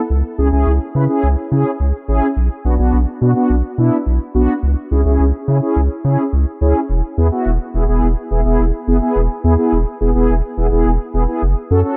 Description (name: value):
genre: synth-pop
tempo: 106 BPM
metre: 4/4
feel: straight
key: unclear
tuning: A4 = 439 Hz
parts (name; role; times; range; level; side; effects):
- round analog bass; bass; 0.1-11.8 s; E1 to C#3; -17 LUFS; equal; none
- mellow synth brass; accompaniment; 0.4-12.0 s; B3 to B4; -20 LUFS; equal; chorus
room: light reverb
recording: dark, warm production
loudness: -16 LUFS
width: mono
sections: 0.0-6.9 A section; 6.9-12.0 B section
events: none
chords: 0.1 C#m; 2.4 Bm; 4.6 C#m; 6.9 E; 11.4 F#m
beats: | 0.10 0.67 1.24 1.80 | 2.37 2.93 3.50 4.07 | 4.63 5.20 5.76 6.33 | 6.89 7.46 8.03 8.59 | 9.16 9.72 10.29 10.86 | 11.42